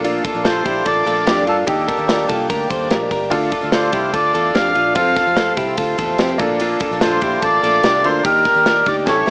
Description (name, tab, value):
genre	jangly indie pop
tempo	146 BPM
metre	4/4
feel	straight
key	unclear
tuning	A4 = 440 Hz
part	bright upright piano	accompaniment	0.0-9.3 s	Bb3 to A4	-27 LUFS	equal	none
part	picked twelve-string acoustic guitar	accompaniment	0.0-9.3 s	F2 to F4	-29 LUFS	equal	none
part	accordion	sustained chords	0.0-9.3 s	Bb3 to D6	-29 LUFS	equal	none
part	direct-recorded clean electric guitar	arpeggios	0.0-9.3 s	C4 to C5	-23 LUFS	equal	none
part	vintage muted fingered electric bass	bass	0.0-9.3 s	G1 to G2	-33 LUFS	equal	none
part	modern studio drum kit	drums	0.0-9.3 s	kick drum, ride cymbal, snare drum	-24 LUFS	equal	none
part	melodica	melody	0.5-9.3 s	A4 to F5	-20 LUFS	equal	none
part	warm studio violin section	second line	0.5-9.3 s	A5 to F6	-30 LUFS	equal	analog delay
room	moderate large studio reverb, RT60 1.3 s, studio reverb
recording	cassette tape, small speaker sound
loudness	-17 LUFS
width	mono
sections	0.0-9.3 A section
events	drum fill 9.1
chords	0.0 Bbmaj7; 1.7 Ebmaj7; 3.3 Dm; 5.0 F; 6.4 Bbmaj7; 8.3 Ebmaj7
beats	| 0.04 0.45 0.86 1.27 | 1.68 2.09 2.50 2.91 | 3.32 3.73 4.14 4.55 | 4.96 5.37 5.79 6.20 | 6.61 7.02 7.43 7.84 | 8.25 8.66 9.07